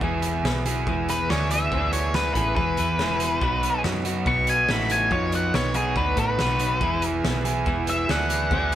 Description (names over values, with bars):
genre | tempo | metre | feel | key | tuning
indie rock | 141 BPM | 4/4 | straight | E major | A4 = 442 Hz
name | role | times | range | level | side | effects
overdriven combo organ | sustained chords | 0.0-8.8 s | G#4 to E6 | -40 LUFS | equal | none
overdriven electric guitar | riff | 0.0-8.8 s | E3 to G#4 | -28 LUFS | right 5 dB | none
twelve-string electric guitar | riff | 0.0-8.8 s | E2 to A4 | -30 LUFS | left 5 dB | none
hollow-body short-scale fingered electric bass | bass | 0.0-8.8 s | E1 to A2 | -28 LUFS | equal | none
loose indie drum kit | drums | 0.0-8.8 s | hi-hat, kick drum, snare drum | -29 LUFS | equal | none
octave-fuzz lead guitar | melody | 1.1-8.7 s | G#4 to C#6 | -24 LUFS | left 1 dB | distortion
room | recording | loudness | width
moderate studio reverb, RT60 0.8 s | band playing live in one room | -21 LUFS | side -12 dB against mid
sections
0.0-8.8 A section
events
lead electric guitar solo 0.0-8.8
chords
0.0 E; 3.4 Badd9; 6.8 Eadd9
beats
| 0.02 0.45 0.87 1.30 | 1.72 2.15 2.57 3.00 | 3.42 3.85 4.27 4.69 | 5.12 5.54 5.97 6.39 | 6.82 7.24 7.66 8.09 | 8.51